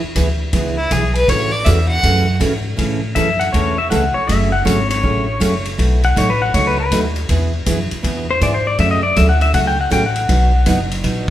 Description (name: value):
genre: country, western swing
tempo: 160 BPM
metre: 4/4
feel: swing 65% on 8ths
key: A major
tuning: A4 = 440 Hz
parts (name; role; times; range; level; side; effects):
- upright bass; bass; 0.0-11.3 s; F#1 to A2; -18 LUFS; equal; none
- picked steel-string acoustic guitar; accompaniment; 0.2-11.3 s; B2 to A4; -20 LUFS; right 2 dB; none
- swinging big-band drum kit; drums; 0.2-11.2 s; hi-hat, kick drum, ride cymbal; -23 LUFS; equal; none
- clear fiddle; melody; 0.8-2.4 s; E4 to F#5; -18 LUFS; equal; none
- pedal steel guitar; second line; 3.2-10.8 s; B4 to G5; -18 LUFS; left 3 dB; none
room: moderate large studio reverb, RT60 1.2 s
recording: band playing live in one room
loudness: -14 LUFS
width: side -12 dB against mid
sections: 0.0-2.8 A section; 2.8-11.3 A section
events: fiddle solo 0.0-2.8; pedal steel guitar solo 2.8-11.3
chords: 0.0 E; 1.3 A6; 2.8 A; 4.3 F#m; 5.8 B7; 7.3 E; 8.8 F#m; 10.3 B